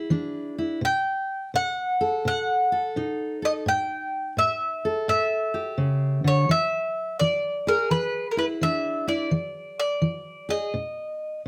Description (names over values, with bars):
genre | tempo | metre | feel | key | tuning
acoustic country blues, solo or duo | 85 BPM | 4/4 | swing 65% on 8ths | E mixolydian | A4 = 436 Hz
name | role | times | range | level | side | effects
mandolin | melody | 0.0-11.4 s | A#4 to G5 | -27 LUFS | equal | none
fingerpicked steel-string acoustic guitar | accompaniment | 0.0-11.5 s | A2 to A4 | -28 LUFS | equal | none
room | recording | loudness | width
light reverb | none | -25 LUFS | mono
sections
0.0-11.5 A section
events
none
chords
0.0 E7; 0.8 B7; 3.7 A7; 6.5 E7; 10.7 B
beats
0.11 | 0.82 1.53 2.24 2.95 | 3.66 4.37 5.08 5.79 | 6.50 7.20 7.91 8.62 | 9.32 10.03 10.73 11.44